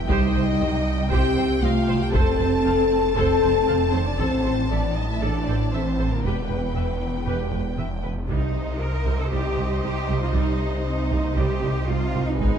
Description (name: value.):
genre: cinematic, hybrid orchestral and electronic film score.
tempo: 117 BPM.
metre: 4/4.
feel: straight.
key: C dorian.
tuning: A4 = 440 Hz.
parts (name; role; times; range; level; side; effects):
rich symphonic violin section; melody; 0.0-8.1 s; G5 to A5; -34 LUFS; left 2 dB; none.
snarling distorted saw bass; bass; 0.0-12.6 s; E1 to C2; -26 LUFS; equal; none.
rich studio violin section; second line; 0.1-12.6 s; Bb4 to A5; -32 LUFS; left 1 dB; none.
rich symphonic viola section; accompaniment; 0.1-12.6 s; G3 to F5; -32 LUFS; right 2 dB; none.
mellow French horn section; sustained chords; 0.1-12.6 s; G3 to A4; -26 LUFS; left 5 dB; none.
rich symphonic cello section; bass; 0.1-12.6 s; D3 to Bb4; -28 LUFS; right 4 dB; none.
rich symphonic double bass section; bass; 0.1-12.5 s; E1 to C2; -28 LUFS; right 4 dB; none.
taiko ensemble; drums; 0.1-5.2, 8.3-9.3, 12.4-12.6 s; none; -26 LUFS; equal; none.
room: moderate scoring stage reverb, RT60 1.9 s.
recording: dark, warm production.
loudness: -20 LUFS.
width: side -8 dB against mid.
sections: 0.0-8.3 A section; 8.3-12.6 B section.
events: none.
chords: 0.1 Cm; 2.1 F; 4.2 Am; 6.2 Em; 8.3 Cm.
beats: | 0.09 0.60 1.11 1.63 | 2.14 2.65 3.17 3.68 | 4.19 4.70 5.22 5.73 | 6.24 6.75 7.27 7.78 | 8.29 8.81 9.32 9.83 | 10.35 10.86 11.37 11.88 | 12.40.